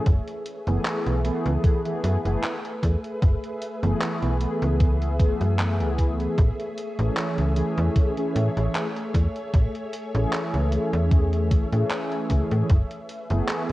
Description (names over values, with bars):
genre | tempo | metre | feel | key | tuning
vaporwave | 76 BPM | 4/4 | swing 54% on 16ths | A major | A4 = 443 Hz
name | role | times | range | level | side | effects
mellow synth brass | accompaniment | 0.0-13.7 s | E3 to G#4 | -27 LUFS | equal | wide subtle chorus, cassette tape, analog delay
soft string machine | sustained chords | 0.0-13.7 s | A3 to E5 | -33 LUFS | equal | ensemble chorus
slap-like FM bass | bass | 0.1-13.7 s | F#1 to A2 | -23 LUFS | equal | none
electronic kick drum | drums | 0.1-12.9 s | none | -20 LUFS | equal | vintage 12-bit sampler grit
gated 80s digital drum machine | drums | 0.1-13.7 s | handclaps, hi-hat | -32 LUFS | equal | gated reverb, vintage 12-bit sampler grit
room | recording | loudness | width
light reverb | worn, warbling old tape, cassette tape, warbly pitch drift | -21 LUFS | side -17 dB against mid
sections
0.0-13.7 A section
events
none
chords
0.1 F#m11; 6.4 Amaj7; 12.7 F#m11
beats
| 0.06 0.85 1.64 2.43 | 3.22 4.01 4.80 5.59 | 6.38 7.17 7.96 8.75 | 9.54 10.33 11.12 11.91 | 12.70 13.48